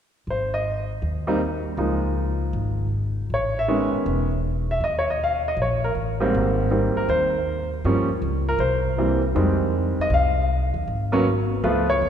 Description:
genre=jazz piano trio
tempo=158 BPM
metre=4/4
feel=swing 66% on 8ths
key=Ab major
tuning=A4 = 438 Hz
part: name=bright upright piano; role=melody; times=0.3-12.1 s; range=Ab2 to F5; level=-22 LUFS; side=equal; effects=none
part: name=upright bass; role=bass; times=0.3-12.1 s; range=E1 to G2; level=-25 LUFS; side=equal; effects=none
room=wet church reverb, RT60 2.7 s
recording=recorded in a church or concert hall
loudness=-20 LUFS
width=side -8 dB against mid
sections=0.3-6.3 A section; 6.3-12.1 B section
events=none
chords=0.3 Ab; 1.8 Db69; 3.3 Amaj9#11; 4.8 Eb5; 6.3 Abmaj9; 7.8 Gm7b5; 8.6 C7; 9.4 Fm7; 10.9 N.C.

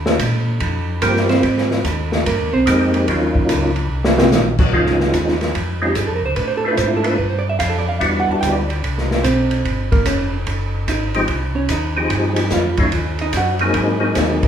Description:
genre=soul jazz organ trio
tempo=146 BPM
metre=4/4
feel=swing 66% on 8ths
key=Ab major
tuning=A4 = 440 Hz
part: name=mellow tonewheel organ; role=bass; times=0.0-14.5 s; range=F1 to Bb2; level=-22 LUFS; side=left 1 dB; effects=chorus vibrato, slow rotary speaker
part: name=open jazz drum kit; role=drums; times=0.1-14.5 s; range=crash cymbal, hi-hat, kick drum, ride cymbal, snare drum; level=-20 LUFS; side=equal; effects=none
part: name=percussive tonewheel organ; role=melody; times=1.0-8.6, 11.2-14.5 s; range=F3 to Ab4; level=-19 LUFS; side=left 1 dB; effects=slow rotary speaker, chorus vibrato
part: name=hollow-body jazz guitar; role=accompaniment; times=1.0-14.5 s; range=C3 to A5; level=-20 LUFS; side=right 3 dB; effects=none
room=moderate large studio reverb, RT60 0.8 s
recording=band playing live in one room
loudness=-15 LUFS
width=side -9 dB against mid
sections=0.0-4.7 A section; 4.7-14.5 A section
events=hollow-body jazz guitar solo 0.0-14.5; drum fill 3.9-4.3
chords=0.0 Eb69; 1.4 Abmaj7; 3.1 Ebm7; 3.9 Ebm6; 4.7 Dbmaj9; 6.4 Dm9; 7.2 F69; 8.0 Cmaj9#11; 9.7 Gm7b5; 10.5 Gbsus2; 11.3 Fm9; 12.9 Ebm; 13.8 Ab7

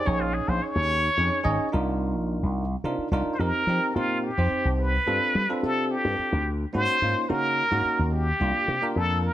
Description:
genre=electric jazz fusion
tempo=72 BPM (dotted quarters)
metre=6/8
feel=straight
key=C phrygian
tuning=A4 = 440 Hz
part: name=trumpet with plunger mute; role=melody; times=0.0-9.3 s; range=F4 to Db5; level=-25 LUFS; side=equal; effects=none
part: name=bell-like tine electric piano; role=accompaniment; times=0.1-9.3 s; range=Bb3 to Eb5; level=-29 LUFS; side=right 2 dB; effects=none
part: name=slap bass with an envelope filter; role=bass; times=0.1-9.3 s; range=Ab1 to G3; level=-26 LUFS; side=equal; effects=none
room=moderate stone room reverb, RT60 1.0 s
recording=band playing live in one room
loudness=-22 LUFS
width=side -12 dB against mid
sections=0.0-3.4 A section; 3.4-9.3 B section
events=muted trumpet solo 0.0-3.4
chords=0.1 Bbm7; 1.7 Cm11; 3.4 F9sus4; 5.1 G9sus4; 6.7 Ab9sus4; 8.4 C9sus4

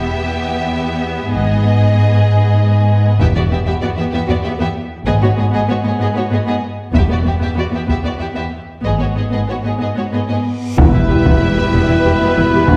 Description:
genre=cinematic, epic orchestral film score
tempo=95 BPM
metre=3/4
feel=straight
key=unclear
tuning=A4 = 440 Hz
part: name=rich symphonic violin section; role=melody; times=0.0-12.8 s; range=B4 to E5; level=-28 LUFS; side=equal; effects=none
part: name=warm symphonic violin section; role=second line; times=0.0-12.8 s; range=F#4 to B4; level=-26 LUFS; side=equal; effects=none
part: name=rich symphonic viola section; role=accompaniment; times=0.0-12.8 s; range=B3 to G4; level=-25 LUFS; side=equal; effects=none
part: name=rich symphonic double bass section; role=bass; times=0.0-12.8 s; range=E1 to G#1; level=-22 LUFS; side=equal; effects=none
part: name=warm symphonic cello section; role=bass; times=0.0-12.7 s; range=E2 to G#2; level=-19 LUFS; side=equal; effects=none
part: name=taiko ensemble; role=drums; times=3.2-12.8 s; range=none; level=-19 LUFS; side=equal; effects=none
part: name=reverse cymbal and impact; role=sound effects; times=10.6-12.7 s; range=none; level=-29 LUFS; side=equal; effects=none
part: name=mellow French horn section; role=sustained chords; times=10.1-12.8 s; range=B3 to E4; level=-21 LUFS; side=equal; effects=none
part: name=clear studio string section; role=sustained chords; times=10.8-12.8 s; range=B3 to G#5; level=-25 LUFS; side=equal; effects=none
part: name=mellow trombone section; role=sustained chords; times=10.8-12.8 s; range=B2 to G#3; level=-26 LUFS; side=equal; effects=none
part: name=clear trumpet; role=stabs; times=10.8-12.8 s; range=B4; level=-22 LUFS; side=equal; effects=none
part: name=timpani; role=percussion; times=10.8-11.7 s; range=E2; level=-23 LUFS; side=equal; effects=none
room=wet scoring stage reverb, RT60 1.5 s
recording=heard from further back in the room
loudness=-15 LUFS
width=mono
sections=0.0-10.8 A section; 10.8-12.8 B section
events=build-up 0.0-10.8; reverse cymbal 10.6; impact 10.8-12.7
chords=0.0 Em; 1.3 G#m; 3.2 Em; 5.1 G#m; 6.9 Em; 8.8 G#m; 10.8 Em

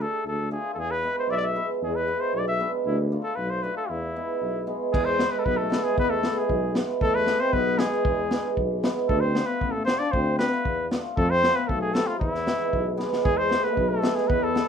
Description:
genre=klezmer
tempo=116 BPM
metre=2/4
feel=straight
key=E phrygian dominant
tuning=A4 = 440 Hz
part: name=warm cornet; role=melody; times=0.0-14.7 s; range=E4 to E5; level=-26 LUFS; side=left 1 dB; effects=none
part: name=cimbalom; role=accompaniment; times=0.0-14.7 s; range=G#3 to G#4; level=-28 LUFS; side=right 3 dB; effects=none
part: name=warm tuba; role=bass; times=0.0-14.6 s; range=A1 to F2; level=-30 LUFS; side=equal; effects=none
part: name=crunchy breakbeat drum kit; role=drums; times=4.9-14.7 s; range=crash cymbal, kick drum, snare drum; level=-28 LUFS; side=equal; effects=none
part: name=warm trombone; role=second line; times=5.0-14.7 s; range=E3 to D4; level=-30 LUFS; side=left 6 dB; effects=none
room=wet studio reverb, RT60 0.5 s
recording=minimal, uncompressed stereo recording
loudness=-22 LUFS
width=side -7 dB against mid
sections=0.0-4.9 A section; 4.9-13.2 B section; 13.2-14.7 B section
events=drum fill 13.0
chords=0.0 Dm; 0.8 E; 2.9 Dm; 3.9 E; 9.1 Dm; 11.2 F; 12.2 E

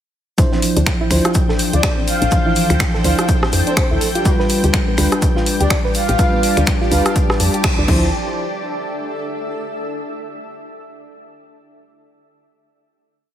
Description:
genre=deep house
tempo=124 BPM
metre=4/4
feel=swing 58% on 16ths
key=D dorian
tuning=A4 = 440 Hz
part: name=mellow FM electric piano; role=stabs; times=0.4-8.1 s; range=E3 to C5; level=-20 LUFS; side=left 1 dB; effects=chorus, sidechain pumping, dub echo
part: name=crunchy breakbeat drum kit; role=drums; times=0.4-7.8 s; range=hi-hat, shaker, snare drum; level=-33 LUFS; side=equal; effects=none
part: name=deep house drum kit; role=drums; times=0.4-8.0 s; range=crash cymbal, finger snaps, hi-hat, rim click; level=-21 LUFS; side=equal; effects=studio reverb
part: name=electronic kick drum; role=drums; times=0.4-8.0 s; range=none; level=-18 LUFS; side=equal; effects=studio reverb
part: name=analog string pad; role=texture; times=0.7-8.1 s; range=G5 to G6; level=-31 LUFS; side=left 2 dB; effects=ensemble chorus, sidechain pumping
part: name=granular cloud pad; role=texture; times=1.6-10.0 s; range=D4 to A5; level=-27 LUFS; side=equal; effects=built-in reverb, sidechain pumping
part: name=soft round pluck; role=arpeggios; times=0.5-8.1 s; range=B3 to B4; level=-26 LUFS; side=right 2 dB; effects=chorus, sidechain pumping, dub echo
part: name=woody FM bass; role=bass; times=0.8-8.1 s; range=A1 to F2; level=-17 LUFS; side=equal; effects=sidechain pumping
part: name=breathy flute-like synth lead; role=melody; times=1.7-7.1 s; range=G4 to F5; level=-22 LUFS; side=right 1 dB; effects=ensemble chorus, ping-pong delay
room=light reverb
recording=heavily compressed radio sound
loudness=-14 LUFS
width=side -10 dB against mid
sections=0.4-8.1 drop; 8.1-10.1 final note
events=drop 0.4-8.1; band accent 7.6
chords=0.4 Dm9; 4.3 G7/D; 7.9 Dm9; 8.1 Dsus2

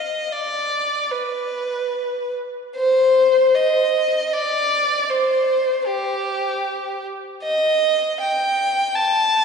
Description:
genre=classical, free, expressive piece for unaccompanied violin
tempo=free time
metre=none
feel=none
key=C minor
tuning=A4 = 440 Hz
part: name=rich violin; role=solo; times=0.0-9.4 s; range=G4 to A5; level=-18 LUFS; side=equal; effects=none
room=wet church reverb, RT60 3.3 s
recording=recorded in a church or concert hall, nothing above 10.8 kHz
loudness=-18 LUFS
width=side -6 dB against mid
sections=0.0-9.4 A section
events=none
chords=none

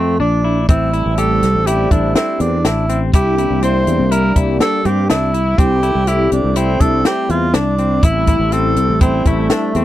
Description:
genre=progressive instrumental, band music in an uneven meter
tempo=122 BPM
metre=5/4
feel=straight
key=A phrygian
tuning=A4 = 438 Hz
part: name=breathy tenor saxophone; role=melody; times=0.0-9.8 s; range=A3 to C5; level=-18 LUFS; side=right 2 dB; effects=none
part: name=semi-hollow electric guitar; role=arpeggios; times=0.0-9.8 s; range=C4 to G4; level=-23 LUFS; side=left 8 dB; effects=none
part: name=sustaining fretless electric bass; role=bass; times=0.0-9.8 s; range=A1 to G2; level=-17 LUFS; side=equal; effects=analog chorus
part: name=phased analog pad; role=accompaniment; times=0.7-9.7 s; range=G3 to G4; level=-21 LUFS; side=left 1 dB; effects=phaser, chorus
part: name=compact cocktail drum kit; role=drums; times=0.7-9.8 s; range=hi-hat, kick drum, snare drum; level=-15 LUFS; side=equal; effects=none
room=little or no reverb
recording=dry, close 1970s-style studio recording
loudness=-12 LUFS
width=side -13 dB against mid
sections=0.0-9.8 A section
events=none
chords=0.0 Bbmaj7; 0.7 Am7; 3.1 C7; 5.6 Am7/C; 8.0 Am7

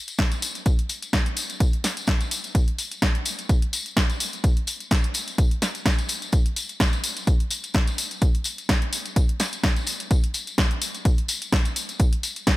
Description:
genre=house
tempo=127 BPM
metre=4/4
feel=swing 55% on 16ths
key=none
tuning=none
part: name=punchy analog drum machine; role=drums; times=0.1-12.6 s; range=hi-hat, snare drum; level=-26 LUFS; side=equal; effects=none
part: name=tambourine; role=percussion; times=0.1-12.6 s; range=none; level=-31 LUFS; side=left 3 dB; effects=none
part: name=electronic kick drum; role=drums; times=0.2-12.6 s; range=none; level=-20 LUFS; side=equal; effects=none
room=little or no reverb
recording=none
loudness=-21 LUFS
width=side -18 dB against mid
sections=0.0-12.6 A section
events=none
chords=none

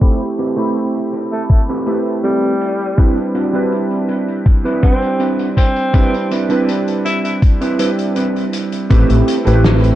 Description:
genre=vaporwave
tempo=81 BPM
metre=4/4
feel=straight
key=A minor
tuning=A4 = 440 Hz
part: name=warm electric grand piano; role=accompaniment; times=0.0-10.0 s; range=G3 to B5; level=-18 LUFS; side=right 1 dB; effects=analog chorus, analog delay
part: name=mellow electric guitar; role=riff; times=0.0-9.9 s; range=C4 to C5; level=-21 LUFS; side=right 2 dB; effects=wide subtle chorus, low-pass filter, analog delay
part: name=electronic kick drum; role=drums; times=0.0-9.1 s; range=none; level=-11 LUFS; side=equal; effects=vintage 12-bit sampler grit
part: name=loose indie drum kit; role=drums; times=0.0-10.0 s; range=hi-hat, snare drum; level=-24 LUFS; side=left 2 dB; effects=low-pass filter on hats, vintage 12-bit sampler grit, low-pass filter on snare, low-pass filter on room
part: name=clear alto saxophone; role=melody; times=1.3-7.4 s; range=G3 to E4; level=-22 LUFS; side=equal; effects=analog delay
part: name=mellow fretless electric bass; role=bass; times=8.9-9.9 s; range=A1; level=-12 LUFS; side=equal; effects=wide subtle chorus
room=light reverb, studio ambience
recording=cassette tape, low-pass filter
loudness=-13 LUFS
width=side -13 dB against mid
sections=0.0-8.9 A section; 8.9-10.0 B section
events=filter sweep on drum 0.0-8.9; filter sweep 0.0-8.9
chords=0.0 Am9; 3.0 Cmaj9; 8.9 Am9

